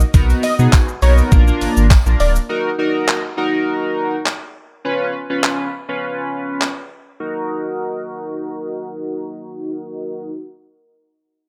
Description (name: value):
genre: dance-pop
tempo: 102 BPM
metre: 4/4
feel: straight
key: Eb minor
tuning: A4 = 440 Hz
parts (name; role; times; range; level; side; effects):
- saturated sub bass; bass; 0.0-2.4 s; D1 to B2; -16 LUFS; equal; sidechain pumping
- detuned 8-bit digital drum machine; drums; 0.0-6.8 s; handclaps, hi-hat, kick drum, shaker; -17 LUFS; equal; none
- chorused polysynth; accompaniment; 0.1-10.3 s; Bb3 to Cb5; -23 LUFS; equal; sidechain pumping, low-pass filter
- tambourine; percussion; 0.1-2.5 s; none; -40 LUFS; equal; none
- unison lead; melody; 0.4-2.3 s; Db5 to D#5; -25 LUFS; equal; sidechain pumping, digital delay
room: little or no reverb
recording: none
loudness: -18 LUFS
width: mono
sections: 0.0-2.5 A section; 2.5-7.2 B section; 7.2-9.6 C section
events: drop 0.0-2.5; filter sweep on analog polysynth 2.5-7.2; break 6.0-7.2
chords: 0.1 Bmaj7; 1.3 Bb; 2.5 Ebm; 4.8 Db7; 7.2 Ebm